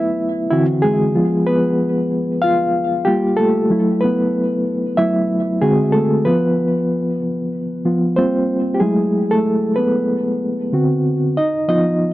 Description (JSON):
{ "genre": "R&B", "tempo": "94 BPM", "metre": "4/4", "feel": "swing 61% on 16ths", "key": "unclear", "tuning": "A4 = 439 Hz", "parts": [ { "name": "reed electric piano", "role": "solo", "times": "0.0-12.1 s", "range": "D3 to F5", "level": "-15 LUFS", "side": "equal", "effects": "fast tremolo, tape echo" } ], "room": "light reverb", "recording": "dry, close 1970s-style studio recording", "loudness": "-15 LUFS", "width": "side -16 dB against mid", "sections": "0.0-12.1 A section", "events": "reed electric piano solo 0.0-12.1", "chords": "0.0 F#m7; 0.5 D9; 1.1 Fdim; 3.1 Gm9; 3.7 F#m7; 5.6 D7; 6.2 N.C.; 8.2 Gm7; 8.8 F#m11; 10.7 D7; 11.4 C#9 (rootless)", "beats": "0.51 | 1.14 1.78 2.42 3.06 | 3.70 4.33 4.97 5.61 | 6.25 6.89 7.53 8.16 | 8.80 9.44 10.08 10.72 | 11.36 11.99" }